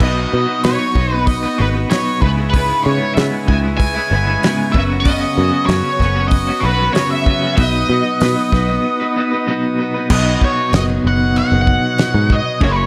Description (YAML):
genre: psychedelic rock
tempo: 95 BPM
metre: 4/4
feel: straight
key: unclear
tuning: A4 = 440 Hz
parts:
  - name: octave-fuzz lead guitar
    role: melody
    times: 0.0-12.9 s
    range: B4 to G#5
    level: -21 LUFS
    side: equal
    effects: wah, distortion, slapback echo
  - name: combo organ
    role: sustained chords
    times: 0.0-12.9 s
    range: F#3 to D#6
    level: -29 LUFS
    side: equal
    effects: none
  - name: twelve-string electric guitar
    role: riff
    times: 0.0-12.9 s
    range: C#2 to B4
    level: -21 LUFS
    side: equal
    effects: tremolo, double-tracked
  - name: picked electric bass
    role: bass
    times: 0.0-12.9 s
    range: F#1 to C#3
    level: -20 LUFS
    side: equal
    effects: none
  - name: damped 70s drum kit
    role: drums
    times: 0.0-12.8 s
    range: crash cymbal, hi-hat, kick drum, snare drum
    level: -21 LUFS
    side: equal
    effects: none
room: light reverb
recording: none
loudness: -16 LUFS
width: mono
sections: 0.0-10.1 A section; 10.1-12.9 B section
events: break 8.8-10.1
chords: 0.0 Badd9; 2.2 C#m7; 4.7 F#sus4; 7.6 B; 10.1 Badd9